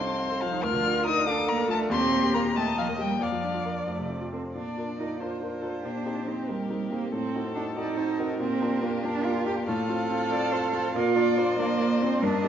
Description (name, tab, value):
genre	quick classical-period movement for piano quartet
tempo	94 BPM (dotted quarters)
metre	6/8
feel	straight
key	Bb major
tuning	A4 = 445 Hz
part	warm violin	melody	0.0-12.5 s	F4 to F6	-31 LUFS	left 6 dB	none
part	clear cello	second line	0.0-12.5 s	F3 to A4	-29 LUFS	right 5 dB	none
part	clear baby grand piano	accompaniment	0.0-12.5 s	C2 to Bb5	-29 LUFS	left 2 dB	none
part	clear viola	accompaniment	0.0-12.5 s	G4 to F5	-34 LUFS	right 2 dB	none
room	wet scoring stage reverb, RT60 2.0 s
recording	nothing above 7.5 kHz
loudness	-24 LUFS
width	side -9 dB against mid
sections	0.0-4.5 A section; 4.5-12.5 B section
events	none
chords	0.0 F7/C; 0.6 Bb/D; 1.9 Eb; 3.2 Bb/F; 3.9 F; 4.5 Bb; 5.8 Cm7/Bb; 7.1 Adim7; 8.4 Bb; 9.7 F/A; 10.9 Bb